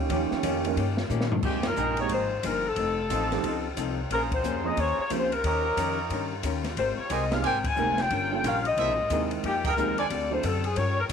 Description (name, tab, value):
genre	jazz, big band swing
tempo	180 BPM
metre	4/4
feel	swing 63% on 8ths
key	F minor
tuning	A4 = 439 Hz
part	clear trombone section	second line	0.0-1.1 s	Eb3 to G4	-31 LUFS	right 9 dB	none
part	upright bass	bass	0.0-11.1 s	F1 to B2	-32 LUFS	left 1 dB	none
part	archtop guitar, miked and amplified	accompaniment	0.1-11.1 s	C3 to C5	-34 LUFS	left 12 dB	none
part	dark upright piano	accompaniment	0.1-5.3, 7.3-10.4 s	F3 to Bb4	-32 LUFS	right 13 dB	none
part	open jazz drum kit	drums	0.1-11.1 s	crash cymbal, hi-hat, kick drum, ride cymbal, snare drum, toms	-32 LUFS	left 1 dB	none
part	mellow saxophone section	melody	1.5-11.0 s	G4 to Ab5	-28 LUFS	left 3 dB	none
part	clear trumpet section	stabs	1.8-10.1 s	Db4 to Bb5	-33 LUFS	right 10 dB	none
room	moderate spring reverb, RT60 1.9 s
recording	1960s-style stereo with parts hard left and right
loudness	-24 LUFS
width	side -7 dB against mid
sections	0.0-1.4 A section; 1.4-11.1 B section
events	trombone section solo 0.0-1.4; drum fill 1.1-1.4; band accent 1.6, 4.3, 7.6, 9.6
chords	0.1 Eb7; 1.4 Fm11; 2.8 F7; 4.1 Bbm9; 5.4 Eb7; 6.8 Abmaj9; 8.1 Gm7b5; 8.8 C7alt; 9.4 Fm11; 10.1 D7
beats	| 0.10 0.44 0.77 1.10 | 1.44 1.77 2.10 2.44 | 2.77 3.10 3.44 3.77 | 4.10 4.43 4.77 5.10 | 5.43 5.77 6.10 6.43 | 6.77 7.10 7.43 7.76 | 8.10 8.43 8.76 9.10 | 9.43 9.76 10.10 10.43 | 10.76 11.09